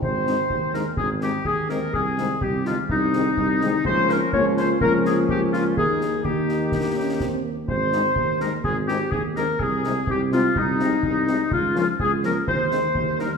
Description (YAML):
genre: military-style march for wind band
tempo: 125 BPM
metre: 2/4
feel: straight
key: Ab major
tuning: A4 = 439 Hz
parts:
  - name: mellow woodwind section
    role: second line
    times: 0.0-13.3 s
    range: Eb4 to Db5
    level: -23 LUFS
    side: left 2 dB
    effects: none
  - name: mellow tuba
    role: bass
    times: 0.0-13.3 s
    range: Ab1 to Eb2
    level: -26 LUFS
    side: right 3 dB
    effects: none
  - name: concert bass drum and concert snare drum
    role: drums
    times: 0.0-13.3 s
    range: none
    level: -31 LUFS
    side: equal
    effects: none
  - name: warm cornet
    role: melody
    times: 0.3-13.3 s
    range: C4 to Eb4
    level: -38 LUFS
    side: right 2 dB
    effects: none
  - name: mellow French horn section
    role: accompaniment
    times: 0.3-13.3 s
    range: C3 to C4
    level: -28 LUFS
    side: left 4 dB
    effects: none
  - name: mellow euphonium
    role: second line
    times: 6.2-7.5 s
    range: Bb3 to Eb4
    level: -32 LUFS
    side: right 4 dB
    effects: none
room: wet scoring stage reverb, RT60 1.6 s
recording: minimal, uncompressed stereo recording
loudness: -20 LUFS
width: side -5 dB against mid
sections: 0.0-13.4 A section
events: none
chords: 0.0 Ab; 1.9 Ab/C; 3.9 Bbm/Db; 5.8 Eb; 7.7 Ab; 9.6 Ab/C; 11.5 Bbm/Db; 12.5 Ab/Eb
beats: | 0.03 0.50 | 0.98 1.46 | 1.94 2.42 | 2.90 3.38 | 3.85 4.33 | 4.81 5.29 | 5.77 6.25 | 6.73 7.21 | 7.68 8.16 | 8.64 9.12 | 9.60 10.08 | 10.56 11.03 | 11.51 11.99 | 12.47 12.95